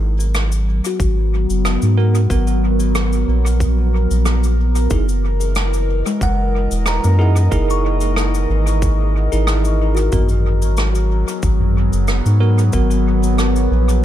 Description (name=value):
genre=ambient dub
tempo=92 BPM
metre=4/4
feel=swing 54% on 16ths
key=G# minor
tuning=A4 = 440 Hz
part: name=warbly tape-like pad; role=sustained chords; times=0.0-14.0 s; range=E3 to D#5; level=-23 LUFS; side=left 2 dB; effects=chorus, built-in reverb, phaser
part: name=soft dub sub bass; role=bass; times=0.0-14.0 s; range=E1 to G#2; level=-16 LUFS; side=equal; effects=none
part: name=soft-mallet drum kit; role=drums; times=0.2-14.0 s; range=cabasa, rim click, toms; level=-25 LUFS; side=equal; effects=dub echo
part: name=kalimba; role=arpeggios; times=0.9-12.5 s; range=G#3 to C#6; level=-27 LUFS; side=left 4 dB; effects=dub echo
part: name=electronic kick drum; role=drums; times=1.0-12.9 s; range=none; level=-21 LUFS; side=equal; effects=none
part: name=bell-like tine electric piano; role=stabs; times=2.0-14.0 s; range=B3 to A#4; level=-25 LUFS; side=right 3 dB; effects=fast stereo tremolo, dub echo
room=small room ambience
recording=echo-heavy mix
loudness=-14 LUFS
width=side -12 dB against mid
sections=0.0-14.0 A section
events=none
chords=0.0 G#m9; 4.9 F#13; 10.1 G#m9